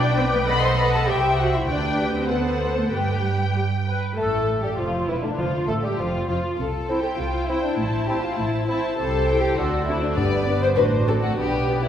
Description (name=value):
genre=quick classical-period movement for symphony orchestra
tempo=99 BPM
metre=2/4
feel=straight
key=G major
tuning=A4 = 440 Hz
part: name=muted studio violin section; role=melody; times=0.0-11.9 s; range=D4 to A5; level=-30 LUFS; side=left 2 dB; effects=none
part: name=muted studio violin section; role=second line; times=0.0-11.9 s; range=D4 to C6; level=-26 LUFS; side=left 3 dB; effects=none
part: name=muted studio viola section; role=accompaniment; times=0.0-11.9 s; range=D3 to D#5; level=-28 LUFS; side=equal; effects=none
part: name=muted studio cello section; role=bass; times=0.0-11.9 s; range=D2 to C5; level=-29 LUFS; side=right 1 dB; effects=none
part: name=muted studio double bass section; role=bass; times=0.0-11.9 s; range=E1 to G2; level=-26 LUFS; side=right 2 dB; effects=none
part: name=warm clarinet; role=second line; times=4.2-11.9 s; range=D4 to C5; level=-29 LUFS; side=left 1 dB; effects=none
part: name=warm bassoon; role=accompaniment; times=4.2-11.9 s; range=D3 to D4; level=-30 LUFS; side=right 2 dB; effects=none
part: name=timpani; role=percussion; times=5.4-6.3, 10.2-10.7 s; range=G2 to D3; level=-30 LUFS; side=left 2 dB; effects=none
room=wet scoring stage reverb, RT60 1.7 s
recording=heard from further back in the room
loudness=-20 LUFS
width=side -9 dB against mid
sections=0.0-4.2 A section; 4.2-11.9 B section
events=none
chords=0.5 B7; 1.1 C; 1.7 G/D; 2.3 D7; 2.9 G; 4.2 Fmaj13; 5.4 Fadd9; 6.6 C; 7.8 Am; 9.0 Am7/C; 9.6 D7; 10.2 G; 10.8 D7/A; 11.4 G/B